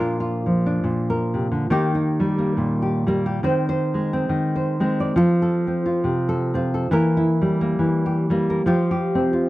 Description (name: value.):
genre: folk, solo fingerstyle acoustic guitar.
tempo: 69 BPM.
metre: 4/4.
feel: swing 58% on 8ths.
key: Bb major.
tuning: A4 = 437 Hz.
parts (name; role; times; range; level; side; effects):
nylon-string guitar; solo; 0.0-9.5 s; Bb2 to D5; -19 LUFS; equal; none.
room: light reverb.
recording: dry, close 1970s-style studio recording.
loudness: -19 LUFS.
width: side -17 dB against mid.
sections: 0.0-9.5 A section.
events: none.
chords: 0.0 Bb; 1.7 Eb; 3.4 Ab/Eb; 5.2 F; 6.9 Edim; 8.6 Fsus2.